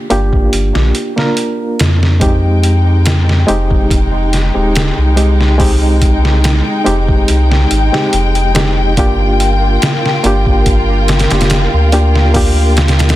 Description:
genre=trip hop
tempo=71 BPM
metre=4/4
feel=straight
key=F dorian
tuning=A4 = 440 Hz
part: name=barky reed electric piano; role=accompaniment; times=0.0-13.2 s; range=Ab3 to Bb4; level=-16 LUFS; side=equal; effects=overdrive, medium tremolo, tape echo
part: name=warm sub bass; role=bass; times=0.1-13.2 s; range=Eb1 to F2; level=-12 LUFS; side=equal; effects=none
part: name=trip hop sampler-style drum kit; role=drums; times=0.1-13.2 s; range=hi-hat, kick drum, snare drum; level=-15 LUFS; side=equal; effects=studio reverb
part: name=muted studio string section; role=sustained chords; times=2.2-13.2 s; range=Ab3 to G5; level=-18 LUFS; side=left 2 dB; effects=vintage 12-bit sampler grit
room=little or no reverb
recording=dense, heavily limited modern master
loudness=-9 LUFS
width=side -15 dB against mid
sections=0.0-13.2 A section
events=none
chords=0.0 Gm7; 2.2 Fm9; 9.0 Gm7

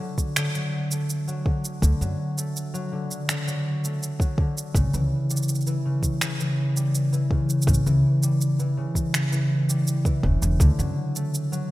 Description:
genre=folktronica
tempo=82 BPM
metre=4/4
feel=straight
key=D major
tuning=A4 = 438 Hz
part: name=concert harp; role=arpeggios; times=0.0-11.7 s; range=C#3 to A3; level=-24 LUFS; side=equal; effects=vintage 12-bit sampler grit, ping-pong delay
part: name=electronic kick drum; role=drums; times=0.2-10.7 s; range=none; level=-23 LUFS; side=equal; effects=none
part: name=electronic shaker and finger snaps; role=drums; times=0.2-11.7 s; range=none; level=-30 LUFS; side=right 2 dB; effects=none
part: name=upright bass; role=bass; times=1.8-10.9 s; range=E1 to F#2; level=-22 LUFS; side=equal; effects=none
room=wet lush hall reverb, RT60 2.7 s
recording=rough home demo mix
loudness=-21 LUFS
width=side -17 dB against mid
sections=0.0-11.7 A section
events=none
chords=0.0 D; 4.7 A7; 10.6 D

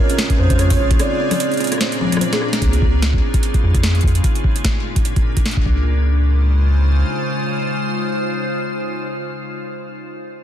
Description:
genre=IDM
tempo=148 BPM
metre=4/4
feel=swing 56% on 16ths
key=Db major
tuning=A4 = 441 Hz
part: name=warbly nostalgic lead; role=melody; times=0.0-2.2 s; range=Bb4 to D5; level=-26 LUFS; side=right 1 dB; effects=chorus, digital delay
part: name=icy glass pad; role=sustained chords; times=0.0-9.8 s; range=Bb2 to C5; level=-23 LUFS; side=left 1 dB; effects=chorus, built-in reverb
part: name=buzzing kalimba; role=arpeggios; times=0.0-2.6 s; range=Ab3 to Db5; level=-25 LUFS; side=right 3 dB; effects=ping-pong delay
part: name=booming analog drum machine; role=drums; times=0.1-5.6 s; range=hi-hat, rim click, snare drum, toms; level=-22 LUFS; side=left 2 dB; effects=overdrive, ping-pong delay
part: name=electronic kick drum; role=drums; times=0.3-5.7 s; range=none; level=-17 LUFS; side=equal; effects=overdrive
part: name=rubbery square bass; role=bass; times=0.4-7.0 s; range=Bb1 to F2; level=-15 LUFS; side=equal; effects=none
room=light reverb, digital ambience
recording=dense, heavily limited modern master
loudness=-15 LUFS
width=side -10 dB against mid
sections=0.0-2.6 A section; 2.6-5.9 B section; 5.9-9.1 C section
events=break 1.0-2.6; drum fill 2.2-2.6; band accent 2.5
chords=0.0 Db; 1.0 Bbadd9; 2.6 Db; 4.2 Bb; 5.7 Db5; 5.9 Dbmaj7

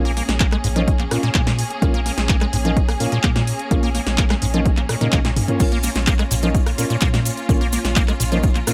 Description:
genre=acid house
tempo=127 BPM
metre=4/4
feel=straight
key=Bb minor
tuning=A4 = 440 Hz
part: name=rich studio string section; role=sustained chords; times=0.0-8.7 s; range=Bb3 to Ab4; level=-30 LUFS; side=equal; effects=sidechain pumping
part: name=warm sub bass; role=bass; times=0.0-8.6 s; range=Bb1 to Bb2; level=-26 LUFS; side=equal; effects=sidechain pumping
part: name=acid bass, square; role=riff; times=0.1-8.7 s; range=Ab2 to Bb3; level=-26 LUFS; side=equal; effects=subtle chorus, cassette tape, analog delay
part: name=punchy analog drum machine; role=drums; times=0.1-8.7 s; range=crash cymbal, handclaps, hi-hat, rim click, snare drum, toms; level=-26 LUFS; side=equal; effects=overdrive
part: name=electronic kick drum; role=drums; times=0.4-8.5 s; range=none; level=-21 LUFS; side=equal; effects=overdrive
part: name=dark concert grand piano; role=stabs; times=0.8-8.7 s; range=Bb3 to F4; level=-28 LUFS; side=equal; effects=analog delay
part: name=cabasa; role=percussion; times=5.6-8.7 s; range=none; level=-33 LUFS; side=equal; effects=none
room=little or no reverb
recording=dry, gritty hardware recording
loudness=-19 LUFS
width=mono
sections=0.0-8.7 A section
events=drum fill 4.7-5.6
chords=0.0 Bbm

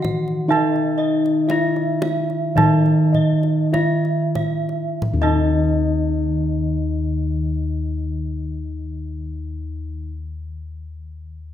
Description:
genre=Javanese gamelan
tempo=44-65 BPM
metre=4/4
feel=straight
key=unclear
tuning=A4 = 440 Hz
part: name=gamelan-type bronze metallophone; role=melody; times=0.0-10.1 s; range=Eb4 to Gb4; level=-24 LUFS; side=left 5 dB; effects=none
part: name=gamelan-type bronze metallophone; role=accompaniment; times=0.0-10.1 s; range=Eb3 to Fb3+35c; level=-24 LUFS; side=right 6 dB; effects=none
part: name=gamelan-type bossed gongs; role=arpeggios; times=0.0-10.1 s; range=Eb5 to Fb5+35c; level=-30 LUFS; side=left 4 dB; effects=none
part: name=gamelan-type bronze metallophone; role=arpeggios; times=0.0-10.1 s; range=Eb5 to Gb5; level=-30 LUFS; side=right 5 dB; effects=none
part: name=gamelan-type bossed gongs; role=bass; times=0.0-10.0 s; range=Eb2 to Fb4+35c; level=-22 LUFS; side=left 1 dB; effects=none
part: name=kendang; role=percussion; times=0.0-5.7 s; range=none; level=-26 LUFS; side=equal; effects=none
room=moderate recital hall reverb, RT60 1.7 s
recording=none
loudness=-17 LUFS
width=side -10 dB against mid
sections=0.0-5.0 A section; 5.0-10.4 B section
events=slowing down 0.0-5.0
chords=none

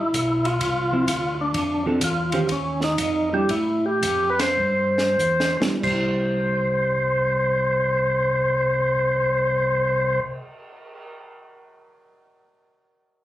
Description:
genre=soul jazz organ trio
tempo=89-128 BPM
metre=4/4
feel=swing 66% on 8ths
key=C major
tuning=A4 = 440 Hz
part: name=percussive tonewheel organ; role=melody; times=0.0-10.2 s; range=Db4 to C5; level=-21 LUFS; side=equal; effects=slow rotary speaker
part: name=mellow tonewheel organ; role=bass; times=0.0-10.2 s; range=A1 to A2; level=-28 LUFS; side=equal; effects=overdrive, chorus vibrato, slow rotary speaker
part: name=compact cocktail drum kit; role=drums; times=0.1-11.1 s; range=crash cymbal, cymbal swell, hi-hat, kick drum, ride cymbal, snare drum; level=-30 LUFS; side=equal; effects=none
part: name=hollow-body jazz guitar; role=accompaniment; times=0.9-10.3 s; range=Eb3 to C5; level=-26 LUFS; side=right 1 dB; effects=none
room=moderate club reverb, RT60 0.6 s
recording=recorded on a phone in the room, club reverb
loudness=-19 LUFS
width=side -14 dB against mid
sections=0.0-5.8 A section; 5.8-11.2 B section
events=slowing down 1.5-5.8; drum fill 5.2-5.8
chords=0.0 A5; 0.6 Csus24; 1.5 F6; 2.5 Ebadd9; 3.5 Fmaj9; 4.6 Gsus4; 5.8 C

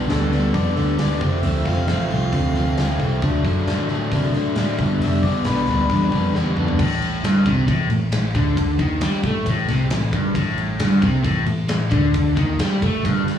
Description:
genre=blues rock power trio and southern rock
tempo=134 BPM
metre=4/4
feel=straight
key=A minor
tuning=A4 = 440 Hz
part: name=overdriven electric guitar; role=riff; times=0.0-13.4 s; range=F2 to D4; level=-21 LUFS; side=equal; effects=none
part: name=vintage muted picked electric bass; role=bass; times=0.0-13.4 s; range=F1 to C3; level=-22 LUFS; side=equal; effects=none
part: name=warm harmonica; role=melody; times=0.1-6.3 s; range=A4 to F5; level=-28 LUFS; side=left 4 dB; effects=overdrive, analog delay
part: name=big rock drum kit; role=drums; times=0.1-13.4 s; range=crash cymbal, hi-hat, kick drum, ride cymbal, snare drum, toms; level=-25 LUFS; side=left 1 dB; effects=none
room=light reverb, small room ambience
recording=live gig heard through the venue's PA, club ambience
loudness=-17 LUFS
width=side -9 dB against mid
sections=0.0-6.8 A section; 6.8-13.4 B section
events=drum fill 6.3-6.8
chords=0.0 G; 1.2 F; 3.2 D; 4.8 G; 6.8 Am

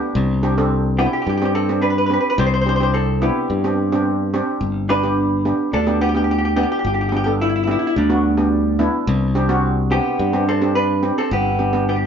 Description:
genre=calypso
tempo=108 BPM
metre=4/4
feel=straight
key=unclear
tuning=A4 = 440 Hz
part: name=steel pan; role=accompaniment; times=0.0-12.0 s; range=B3 to A4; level=-22 LUFS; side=right 2 dB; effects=none
part: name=modern bright fingered electric bass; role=bass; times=0.1-12.1 s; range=G1 to G2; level=-19 LUFS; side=left 1 dB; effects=none
part: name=vintage hollow-body jazz guitar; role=melody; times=1.0-12.0 s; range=G3 to C5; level=-20 LUFS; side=equal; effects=none
room=light reverb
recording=band playing live in one room, nothing above 7.5 kHz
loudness=-16 LUFS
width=side -7 dB against mid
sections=0.0-12.1 A section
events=none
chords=0.2 Csus2; 4.6 G; 9.1 Csus2; 11.3 G

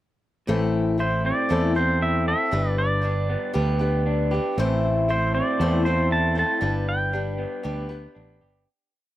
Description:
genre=rock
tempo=117 BPM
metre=4/4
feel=straight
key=A minor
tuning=A4 = 441 Hz
part: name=picked old ladder-braced acoustic guitar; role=accompaniment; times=0.5-8.7 s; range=A2 to C5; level=-27 LUFS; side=left 3 dB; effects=none
part: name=electric guitar through a small old amp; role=riff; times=0.5-8.7 s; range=G2 to A4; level=-28 LUFS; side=right 1 dB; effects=slapback echo
part: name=fingered electric bass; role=bass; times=0.5-8.6 s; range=G1 to E2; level=-24 LUFS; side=equal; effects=none
part: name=pedal steel guitar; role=melody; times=1.0-7.6 s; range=C5 to A5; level=-25 LUFS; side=right 1 dB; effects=slapback echo
part: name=tonewheel organ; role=sustained chords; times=4.6-8.6 s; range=B3 to C5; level=-38 LUFS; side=equal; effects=none
room=little or no reverb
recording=recorded outdoors, with no room sound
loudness=-20 LUFS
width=side -14 dB against mid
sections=0.5-8.7 verse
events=fade-out 6.6-8.7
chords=0.5 Am; 2.5 G; 4.6 Am; 6.6 G

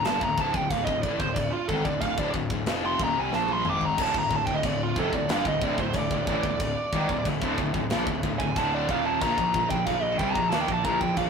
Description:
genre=heavy metal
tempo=92 BPM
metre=4/4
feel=straight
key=D phrygian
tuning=A4 = 440 Hz
part: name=high-gain lead guitar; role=melody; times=0.0-11.3 s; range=F4 to D6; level=-27 LUFS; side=right 2 dB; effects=distortion
part: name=scooped high-gain guitar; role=riff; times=0.0-11.3 s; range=D2 to Bb3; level=-30 LUFS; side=left 4 dB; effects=distortion
part: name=fuzz picked electric bass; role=bass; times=0.0-11.3 s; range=D1 to Eb2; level=-33 LUFS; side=equal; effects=overdrive
part: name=tight metal drum kit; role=drums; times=0.0-11.3 s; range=china cymbal, crash cymbal, kick drum, snare drum, toms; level=-31 LUFS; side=left 1 dB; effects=none
part: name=tight distorted guitar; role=riff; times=4.0-11.3 s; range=D2 to Bb3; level=-32 LUFS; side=right 4 dB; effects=distortion
room=moderate stone room reverb, RT60 1.1 s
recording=rough rehearsal-room recording, tube saturation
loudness=-23 LUFS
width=side -6 dB against mid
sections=0.0-11.3 A section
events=lead electric guitar solo 0.0-11.3; drum fill 3.3-4.0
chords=0.0 Dm; 9.2 Bb5

